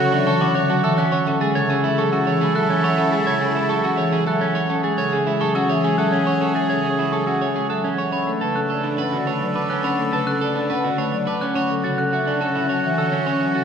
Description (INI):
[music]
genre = classical, minimalist pattern music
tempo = 105 BPM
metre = 3/4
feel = straight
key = B dorian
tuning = A4 = 440 Hz
[part]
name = marimba with soft mallets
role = melody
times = 0.0-13.6 s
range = G#4 to A5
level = -25 LUFS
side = left 4 dB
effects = none
[part]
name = clear oboe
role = second line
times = 0.0-13.6 s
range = F#4 to A4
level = -27 LUFS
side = right 3 dB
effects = none
[part]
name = marimba with medium mallets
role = accompaniment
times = 0.0-13.6 s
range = C#3 to C#4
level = -23 LUFS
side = equal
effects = none
[part]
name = clear symphonic string section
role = sustained chords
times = 0.0-13.6 s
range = C#4 to C#5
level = -29 LUFS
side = left 2 dB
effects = none
[part]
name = electric guitar at the edge of break-up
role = arpeggios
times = 0.0-13.6 s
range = C#4 to C#5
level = -24 LUFS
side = right 6 dB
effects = none
[part]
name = glockenspiel with rubber mallets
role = arpeggios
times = 0.0-13.6 s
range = B5 to A6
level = -27 LUFS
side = left 1 dB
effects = none
[sound]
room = wet cathedral reverb, RT60 6.9 s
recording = recorded in a church or concert hall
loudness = -18 LUFS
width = side -7 dB against mid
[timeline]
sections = 0.0-8.1 A section; 8.1-13.6 B section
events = none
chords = 0.0 Dmaj7; 1.3 F#m7; 8.1 Bm7; 11.6 Dmaj7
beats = 0.12 0.70 | 1.27 1.84 2.41 | 2.98 3.55 4.12 | 4.70 5.27 5.84 | 6.41 6.98 7.55 | 8.12 8.70 9.27 | 9.84 10.41 10.98 | 11.55 12.12 12.70 | 13.27